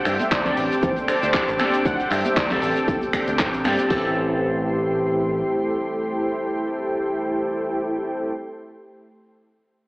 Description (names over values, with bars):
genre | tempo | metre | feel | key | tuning
nu-disco, nu disco | 117 BPM | 4/4 | swing 55% on 16ths | A minor | A4 = 440 Hz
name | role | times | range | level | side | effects
wide unison lead | melody | 0.0-3.4 s | A4 to F#5 | -28 LUFS | equal | vintage 12-bit sampler grit, tape echo
mellow synth brass | accompaniment | 0.0-8.3 s | C4 to A5 | -24 LUFS | equal | chorus, sidechain pumping, tape echo
lush unison pad | sustained chords | 0.0-8.3 s | A3 to D6 | -29 LUFS | equal | chorus, vintage 12-bit sampler grit, sidechain pumping
clean electric guitar | riff | 0.1-8.3 s | C4 to A4 | -26 LUFS | left 1 dB | analog chorus, tape echo
fingered electric bass with an envelope filter | bass | 0.1-5.4 s | A1 to G2 | -28 LUFS | equal | none
damped 70s drum kit | drums | 0.1-3.9 s | cabasa, finger snaps, handclaps, hi-hat | -25 LUFS | equal | small room ambience
congas and maracas | percussion | 0.2-3.9 s | none | -33 LUFS | equal | none
house drum kit | drums | 0.3-4.0 s | hi-hat, kick drum | -26 LUFS | equal | small room ambience
room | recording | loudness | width
light reverb, small room ambience | played on a big sound system in a bare room, stone room reverb, AM radio sound | -20 LUFS | side -22 dB against mid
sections
0.0-3.9 A section; 3.9-8.0 B section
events
drop 0.0-3.9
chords
0.0 D7sus4; 3.9 Am7